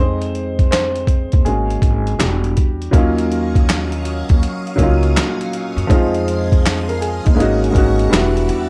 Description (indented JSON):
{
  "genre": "lo-fi hip hop",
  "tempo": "81 BPM",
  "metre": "4/4",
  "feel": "swing 65% on 16ths",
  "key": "Eb dorian",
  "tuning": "A4 = 441 Hz",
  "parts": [
    { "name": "dark upright piano", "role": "accompaniment", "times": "0.0-8.7 s", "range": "F3 to C5", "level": "-21 LUFS", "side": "equal", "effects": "cassette tape" },
    { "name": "upright bass", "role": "bass", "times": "0.0-8.7 s", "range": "E1 to Gb2", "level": "-22 LUFS", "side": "equal", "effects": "none" },
    { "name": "boom bap sampler-style drum kit", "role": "drums", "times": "0.2-8.7 s", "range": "handclaps, hi-hat, kick drum, snare drum", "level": "-18 LUFS", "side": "equal", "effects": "none" },
    { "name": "phased string machine", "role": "sustained chords", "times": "2.9-8.7 s", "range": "Gb3 to Eb6", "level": "-32 LUFS", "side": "equal", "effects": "ensemble chorus, phaser" }
  ],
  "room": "little or no reverb",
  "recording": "none",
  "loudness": "-16 LUFS",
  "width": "mono",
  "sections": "0.0-2.9 A section; 2.9-8.7 B section",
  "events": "upright piano solo 0.0-2.9",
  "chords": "0.0 Fm7; 1.4 Ab9sus4; 2.2 Em9; 2.9 Ebm9; 5.9 Fm7; 7.4 Ab9sus4; 8.1 Em9"
}